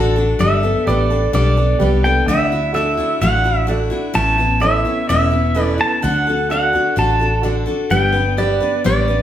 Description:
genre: country.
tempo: 128 BPM.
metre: 4/4.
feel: straight.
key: G major.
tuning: A4 = 439 Hz.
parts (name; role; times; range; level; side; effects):
bright upright piano; accompaniment; 0.0-8.7 s; E4 to A5; -24 LUFS; right 3 dB; none.
picked steel-string acoustic guitar; accompaniment; 0.0-9.2 s; A2 to B4; -20 LUFS; left 4 dB; none.
vintage muted fingered electric bass; bass; 0.0-9.2 s; E1 to D2; -19 LUFS; right 1 dB; none.
pedal steel guitar; melody; 0.4-9.2 s; D5 to A5; -18 LUFS; right 2 dB; none.
room: wet large studio reverb, RT60 0.9 s.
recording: heard from further back in the room.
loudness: -14 LUFS.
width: side -11 dB against mid.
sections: 0.4-9.2 A section.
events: upright piano fill 0.0-0.4.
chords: 0.4 Gadd9; 2.3 Dadd9; 4.2 Aadd9; 6.0 D; 7.9 G.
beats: | 0.41 0.87 1.34 1.81 | 2.28 2.75 3.22 3.69 | 4.16 4.63 5.09 5.56 | 6.03 6.50 6.97 7.44 | 7.91 8.38 8.85.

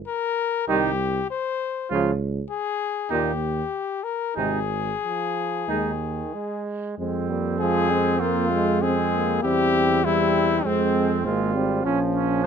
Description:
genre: classical, brass quintet.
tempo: 90-102 BPM.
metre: 4/4.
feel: rubato.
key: Ab major, F minor from 7.0 s.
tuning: A4 = 440 Hz.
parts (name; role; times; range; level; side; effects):
clear cornet; melody; 0.1-11.6 s; C4 to C5; -25 LUFS; left 8 dB; none.
warm trumpet; second line; 0.7-12.5 s; C4 to F4; -29 LUFS; right 10 dB; none.
brilliant trombone; accompaniment; 0.7-12.5 s; Bb2 to Bb3; -28 LUFS; right 5 dB; none.
mellow French horn; accompaniment; 0.7-12.5 s; F3 to Db4; -27 LUFS; left 2 dB; none.
warm tuba; bass; 0.7-12.5 s; Ab1 to F2; -26 LUFS; right 6 dB; none.
room: light reverb.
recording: close, detailed microphones.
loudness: -21 LUFS.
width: side -7 dB against mid.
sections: 0.0-7.0 A section; 7.0-12.5 B section.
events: none.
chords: 0.0 N.C.; 0.7 Cm; 1.9 Db; 3.1 Eb; 4.4 Ab5; 7.0 Fm; 9.4 C/E; 10.7 Fm; 11.9 Bbm.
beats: 0.08 0.68 1.31 | 1.91 2.51 3.11 3.73 | 4.37 5.03 5.68 6.34 | 6.99 7.60 8.21 8.82 | 9.43 10.05 10.66 11.26 | 11.85 12.45.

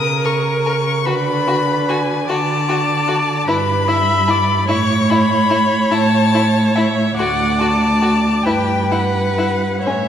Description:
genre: classical, slow romantic movement for string quartet.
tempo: 38-51 BPM (dotted quarters).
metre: 6/8.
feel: rubato.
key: unclear.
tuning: A4 = 440 Hz.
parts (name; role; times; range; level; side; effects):
rich violin; melody; 0.0-10.1 s; E5 to D#6; -19 LUFS; left 6 dB; none.
warm viola; accompaniment; 0.0-10.1 s; A#4 to E5; -20 LUFS; right 2 dB; none.
warm cello; bass; 0.0-10.1 s; D2 to D3; -18 LUFS; right 3 dB; none.
clear violin; second line; 0.2-9.9 s; C#4 to A#4; -23 LUFS; left 2 dB; none.
room: wet concert hall reverb, RT60 2.5 s.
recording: none.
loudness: -14 LUFS.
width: side -9 dB against mid.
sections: 0.0-10.1 A section.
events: none.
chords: 0.0 A#madd11/C#; 1.1 Bm/D; 3.5 Em/G; 4.7 A; 7.2 D; 8.4 Em/G (rootless).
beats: 1.07 | 2.28 3.48 | 4.70 5.91 | 7.17 8.44 | 9.83.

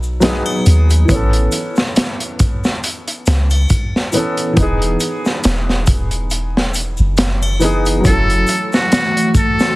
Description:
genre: trip hop.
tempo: 69 BPM.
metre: 4/4.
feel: swing 56% on 16ths.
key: unclear.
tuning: A4 = 440 Hz.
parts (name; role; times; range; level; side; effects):
felt-muted upright piano; accompaniment; 0.0-9.8 s; E3 to A4; -20 LUFS; equal; harmonic tremolo, vintage 12-bit sampler grit, tape echo.
soft 808-style bass; bass; 0.0-8.4 s; E1 to D#2; -15 LUFS; equal; none.
tube shaker and triangle; percussion; 0.0-9.7 s; none; -30 LUFS; left 3 dB; none.
crunchy breakbeat drum kit; drums; 0.2-9.8 s; hi-hat, kick drum, snare drum; -16 LUFS; equal; none.
trumpet with metal mute; melody; 8.1-9.8 s; F#4 to A4; -16 LUFS; equal; none.
warbly tape-like pad; sustained chords; 8.5-9.8 s; E3 to F#4; -20 LUFS; equal; chorus, built-in reverb, phaser.
room: small room ambience.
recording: dense, heavily limited modern master, vinyl crackle.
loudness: -13 LUFS.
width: side -20 dB against mid.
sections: 0.0-9.8 A section.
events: none.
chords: 0.0 B7; 1.1 Aadd9; 4.6 Emaj7; 8.1 F#m7.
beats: 0.22 | 1.09 1.96 2.83 3.70 | 4.57 5.44 6.31 7.18 | 8.05 8.92.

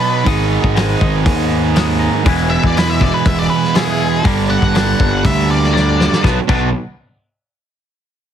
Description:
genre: quiet-loud alternative rock.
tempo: 120 BPM.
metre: 4/4.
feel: straight.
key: unclear.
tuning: A4 = 441 Hz.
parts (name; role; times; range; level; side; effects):
octave-fuzz lead guitar; melody; 0.0-6.2 s; G#4 to F#5; -20 LUFS; left 1 dB; distortion, slapback echo.
twangy electric guitar; arpeggios; 0.0-6.7 s; G2 to E4; -21 LUFS; left 10 dB; phaser.
fuzz guitar; riff; 0.0-6.7 s; E2 to B3; -17 LUFS; right 10 dB; distortion.
fuzz picked electric bass; bass; 0.3-6.7 s; E1 to E2; -17 LUFS; left 1 dB; overdrive.
loose indie drum kit; drums; 0.3-6.6 s; crash cymbal, hi-hat, kick drum, snare drum; -18 LUFS; left 1 dB; none.
room: light reverb.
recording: heavily compressed radio sound, multiband compression.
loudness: -12 LUFS.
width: side -9 dB against mid.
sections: 0.0-6.2 A section; 6.2-8.2 B section.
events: lead electric guitar solo 0.0-6.2; drum fill 5.7-6.2.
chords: 0.3 G#m; 2.3 E; 4.2 Gm; 6.2 Bm.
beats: | 0.26 0.76 1.26 1.75 | 2.25 2.75 3.25 3.75 | 4.25 4.75 5.24 5.74 | 6.24.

